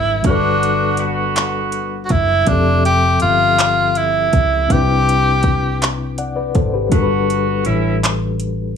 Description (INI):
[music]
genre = slow six-eight R&B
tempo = 54 BPM (dotted quarters)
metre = 6/8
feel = straight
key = unclear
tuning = A4 = 440 Hz
[part]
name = breathy tenor saxophone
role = melody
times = 0.0-5.8 s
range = D4 to G4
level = -16 LUFS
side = right 1 dB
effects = tape echo
[part]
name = mellow reed electric piano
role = accompaniment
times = 0.0-8.8 s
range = C3 to F#5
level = -21 LUFS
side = left 6 dB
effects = fast tremolo
[part]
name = vintage muted fingered electric bass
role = bass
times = 0.0-8.7 s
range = F1 to C#2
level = -20 LUFS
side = equal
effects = none
[part]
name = mellow horn section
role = stabs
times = 0.2-2.1, 6.9-8.0 s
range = D3 to F#4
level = -21 LUFS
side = right 3 dB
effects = none
[part]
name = smooth R&B drum kit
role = drums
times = 0.2-8.6 s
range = handclaps, hi-hat, kick drum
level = -18 LUFS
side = right 1 dB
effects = overdrive
[sound]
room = light reverb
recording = small room ambience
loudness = -14 LUFS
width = side -7 dB against mid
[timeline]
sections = 0.0-8.8 A section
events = none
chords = 0.0 Gmaj9; 2.5 Fmaj9; 4.7 Cmaj9; 6.9 Gmaj9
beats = | 0.25 1.36 | 2.47 3.58 | 4.70 5.81 | 6.92 8.03